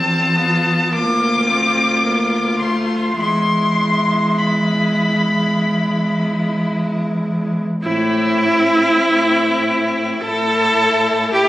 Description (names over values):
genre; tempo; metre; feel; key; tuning
classical, slow romantic movement for string quartet; 48-55 BPM; 4/4; rubato; A minor; A4 = 445 Hz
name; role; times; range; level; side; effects
rich violin; melody; 0.0-11.5 s; E4 to D6; -20 LUFS; left 3 dB; none
rich violin; second line; 0.0-11.5 s; C4 to F4; -25 LUFS; left 1 dB; none
rich viola; accompaniment; 0.0-11.5 s; G#3 to A4; -18 LUFS; right 1 dB; none
rich cello; bass; 0.0-11.5 s; D2 to A2; -21 LUFS; equal; none
room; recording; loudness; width
moderate recital hall reverb, RT60 1.7 s; recorded on a phone in the room, club reverb, compression, nothing above 10.3 kHz; -14 LUFS; side -15 dB against mid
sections
0.0-7.8 A section; 7.8-11.5 B section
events
none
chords
0.0 F; 0.9 Bb/D; 3.2 E; 7.8 Am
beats
0.93 2.05 | 3.19 4.38 5.54 6.69 | 7.84 8.99 10.20 11.33